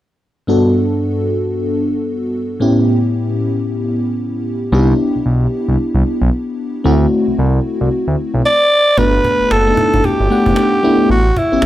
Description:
R&B, new jack swing; 113 BPM; 4/4; swing 60% on 16ths; G major; A4 = 440 Hz
FM electric piano with soft pad layer; accompaniment; 0.5-11.7 s; G2 to F#5; -15 LUFS; left 1 dB; chorus, tremolo
smooth synth bass; bass; 4.7-11.7 s; F#1 to D2; -15 LUFS; equal
growling alto saxophone; melody; 8.5-11.7 s; E4 to D5; -13 LUFS; equal
cajon; drums; 9.0-11.7 s; -23 LUFS; equal
light reverb, small room ambience; -12 LUFS; side -14 dB against mid
0.5-9.0 A section; 9.0-11.7 B section
0.5 Gmaj7; 2.6 A7; 4.7 Cmaj7; 6.8 D7; 9.0 Gmaj7; 11.1 A7

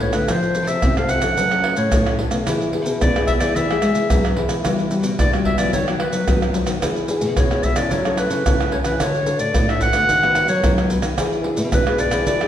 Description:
samba and choro; 110 BPM; 4/4; straight; A4 = 440 Hz
warm clarinet; melody; 0.0-12.5 s; B4 to F#5; -21 LUFS; equal
nylon-string guitar; accompaniment; 0.0-12.5 s; A2 to B4; -24 LUFS; left 4 dB
nylon-string guitar; bass; 0.0-12.5 s; A2 to G#3; -24 LUFS; equal
pandeiro, maracas, tamborim and surdo; percussion; 0.0-12.5 s; -20 LUFS; right 1 dB
wet recital hall reverb, RT60 1.4 s; recorded in a church or concert hall; -16 LUFS; side -10 dB against mid
0.0-12.5 A section
0.3 F; 1.4 Dmaj7; 2.5 E; 4.6 Emadd9; 5.7 B/D#; 6.8 E7; 7.9 F#m7; 9.0 D; 10.1 B/D#; 11.2 E7

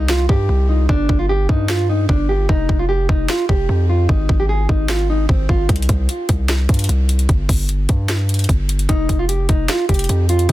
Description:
hip hop, trap; 150 BPM; 4/4; half-time; A4 = 440 Hz
nylon-string guitar; melody; 0.0-5.7, 8.9-10.5 s; C4 to Ab4; -21 LUFS; right 1 dB; low-pass filter, digital delay
distorted 808-style bass; bass; 0.0-10.5 s; F1 to G2; -17 LUFS; equal; distortion
trap drum kit; drums; 0.1-10.5 s; hi-hat, kick drum, snare drum; -18 LUFS; equal
little or no reverb; dense, heavily limited modern master; -14 LUFS; side -16 dB against mid
0.0-10.5 A section
break 0.0-5.7
0.0 C5; 0.9 Ebmaj7/G; 2.5 Ebadd9/F; 4.1 Ab5; 5.7 C5; 7.3 N.C.; 8.9 Ebadd9/F

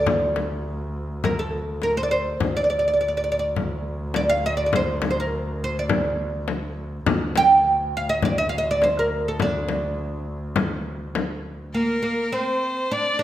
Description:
Arabic maqam ensemble; 103 BPM; 4/4; straight; D maqam bayati; A4 = 439 Hz
oud; melody; 0.0-13.2 s; Bb3 to G5; -22 LUFS; right 2 dB
rich double bass; drone; 0.0-11.8 s; D2; -30 LUFS; equal
frame drum; percussion; 0.1-11.3 s; -25 LUFS; left 4 dB
clear violin; second line; 11.7-13.2 s; Bb4 to D5; -24 LUFS; left 1 dB
wet recital hall reverb, RT60 1.4 s; -21 LUFS; side -12 dB against mid
0.0-11.7 A section; 11.7-13.2 B section

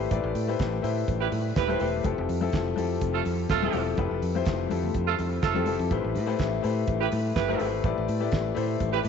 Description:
disco; 124 BPM; 4/4; straight; A minor; A4 = 440 Hz
warm concert grand piano; accompaniment; 0.0-9.1 s; F3 to D5; -28 LUFS; left 9 dB
fingered electric bass; bass; 0.0-9.1 s; D#1 to A2; -30 LUFS; right 2 dB
damped 70s drum kit; drums; 0.1-9.1 s; hi-hat, kick drum, snare drum; -32 LUFS; right 2 dB
congas; percussion; 0.1-9.1 s; -40 LUFS; left 10 dB
mellow horn section; stabs; 1.2-9.0 s; A3 to B4; -30 LUFS; right 12 dB
moderate echo chamber reverb, RT60 2.0 s; 1960s-style stereo with parts hard left and right, nothing above 7.7 kHz; -24 LUFS; side -6 dB against mid
0.0-9.1 A section
0.0 Am9; 2.0 Fmaj7; 5.9 Am9

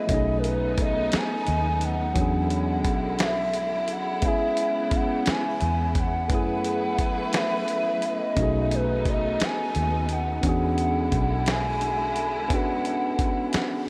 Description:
slow six-eight R&B; 58 BPM (dotted quarters); 6/8; straight; A4 = 443 Hz
gliding portamento lead; melody; 0.0-13.9 s; A#4 to G#5; -30 LUFS; equal; chorus, tape echo
barky tine electric piano; accompaniment; 0.0-13.9 s; F#3 to B4; -31 LUFS; equal; overdrive, phaser
warm studio string section; sustained chords; 0.0-13.9 s; C#3 to B4; -35 LUFS; equal
vintage muted fingered electric bass; bass; 0.0-13.6 s; B1 to F#2; -31 LUFS; equal
dusty soul sampler-style drum kit; drums; 0.1-13.7 s; hi-hat, kick drum, snare drum; -31 LUFS; equal
moderate huge ambient reverb, RT60 6.6 s; dreamy mix soaked in reverb; -25 LUFS; mono
0.0-13.9 A section
0.1 B13; 2.2 E13; 4.2 C#m7; 6.3 F#m11; 8.4 B13; 10.4 E13

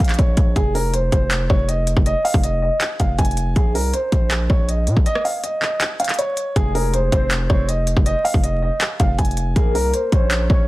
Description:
hip hop, trap; 160 BPM; 4/4; half-time; F minor; A4 = 440 Hz
dark grand piano; melody; 0.0-10.7 s; Ab4 to Ab5; -22 LUFS; right 1 dB; low-pass filter, tape echo
distorted 808-style bass; bass; 0.0-10.7 s; F1 to Bb2; -20 LUFS; equal; distortion
trap drum kit; drums; 0.0-10.6 s; handclaps, hi-hat, kick drum, rim click; -19 LUFS; equal
soft octave-layered synth lead; second line; 6.6-10.7 s; Ab4 to Db5; -27 LUFS; left 3 dB; chorus, phaser, tape echo
digital ambience; dense, heavily limited modern master, vinyl crackle; -16 LUFS; side -18 dB against mid
0.0-6.6 A section; 6.6-10.7 B section
break 5.1-6.6
0.0 Bbm; 0.6 N.C.; 6.6 Fm; 9.6 Bbmadd9

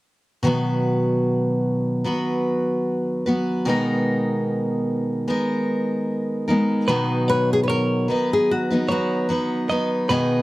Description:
acoustic pop; 75 BPM; 4/4; swing 55% on 16ths; B major; A4 = 440 Hz
picked steel-string acoustic guitar; accompaniment; 0.4-10.4 s; B2 to B4; -20 LUFS; equal
direct-recorded clean electric guitar; arpeggios; 6.9-10.4 s; B4 to D#5; -26 LUFS; right 2 dB
nylon-string guitar; melody; 7.3-9.7 s; F#4 to B4; -22 LUFS; left 2 dB
wet small room reverb, RT60 0.6 s; -19 LUFS; side -18 dB against mid
0.4-6.9 A section; 6.9-10.4 B section
0.4 B; 3.7 G#madd9/B; 6.9 B

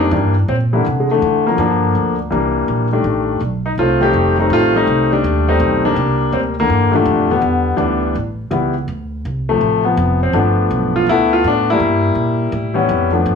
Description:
jazz piano trio; 165 BPM; 4/4; swing 66% on 8ths; C major; A4 = 440 Hz
clear concert grand piano; melody; 0.0-13.4 s; Bb2 to A4; -14 LUFS; left 2 dB
upright bass; bass; 0.0-13.4 s; F1 to D3; -19 LUFS; right 1 dB
light reverb; small room reverb; -13 LUFS; side -6 dB against mid
0.0-13.4 A section
0.1 C9; 1.6 Gm7; 2.3 C9; 3.0 F9; 6.0 C9; 7.4 Em7; 8.1 A7; 8.9 Dm7; 10.3 G9; 11.8 Gm6; 12.5 A7

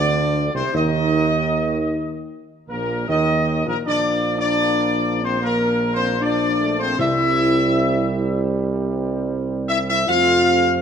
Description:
classical, ceremonial fanfare; 77 BPM; 4/4; straight; A4 = 445 Hz
warm trumpet section; melody; 0.0-10.8 s; Bb4 to F5; -20 LUFS; equal
dark French horn section; sustained chords; 0.0-10.8 s; Bb3 to F4; -23 LUFS; left 3 dB
warm trombone section; sustained chords; 0.0-10.8 s; Bb2 to Bb3; -26 LUFS; right 3 dB
warm tuba; bass; 0.0-10.8 s; Bb1 to F2; -24 LUFS; right 4 dB
timpani; percussion; 7.0-8.1 s; C3; -34 LUFS; right 2 dB
moderate scoring stage reverb, RT60 1.7 s; -17 LUFS; side -7 dB against mid
0.0-10.8 A section
0.0 Amadd11 (rootless); 0.7 Eb5; 3.9 Bb; 7.0 C; 10.1 F

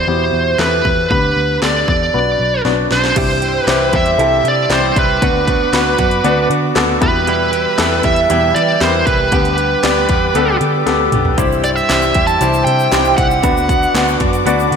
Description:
piano-driven pop; 117 BPM; 4/4; straight; A4 = 440 Hz
smooth overdriven lead guitar; melody; 0.0-14.2 s; B4 to A5; -16 LUFS; right 2 dB; slapback echo
warm grand piano; accompaniment; 0.0-14.8 s; G2 to D5; -18 LUFS; left 6 dB; slapback echo
vintage muted picked electric bass; bass; 0.0-14.8 s; B1 to E3; -21 LUFS; equal
house drum kit; drums; 0.6-14.8 s; crash cymbal, handclaps, hi-hat, kick drum, snare drum, toms; -19 LUFS; equal
warm chamber string section; sustained chords; 3.2-14.8 s; B4 to E6; -25 LUFS; left 4 dB
direct-recorded clean electric guitar; riff; 3.2-14.8 s; E2 to G4; -20 LUFS; right 9 dB; slapback echo
egg shaker; percussion; 11.4-14.7 s; -35 LUFS; left 11 dB
moderate lush hall reverb, RT60 1.8 s, digital ambience; big arena sound; -12 LUFS; side -6 dB against mid
0.0-3.2 A section; 3.2-14.8 B section
drum fill 2.6-3.2, 10.9-11.4
0.0 Em; 1.1 G/D; 2.1 Bm; 3.2 C; 5.2 Bm/D; 7.0 Em; 9.3 G/D; 11.4 C; 13.4 Bm/D

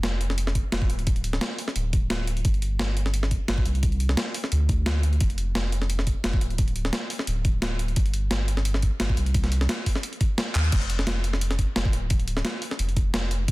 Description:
liquid drum and bass; 174 BPM; 4/4; swing 54% on 16ths; A4 = 440 Hz
saturated sub bass; bass; 0.0-13.5 s; D1 to Eb2; -25 LUFS; equal
breakbeat sampler-style drum kit; drums; 0.0-13.5 s; crash cymbal, handclaps, hi-hat, snare drum; -28 LUFS; equal; small room ambience
electronic kick drum; drums; 0.6-13.5 s; -24 LUFS; equal; small room ambience
digital ambience; dense, heavily limited modern master; -22 LUFS; side -20 dB against mid
0.0-10.7 A section; 10.7-13.5 A section
drop 0.0-10.7, 10.7-13.5; drum fill 10.6; band accent 10.6

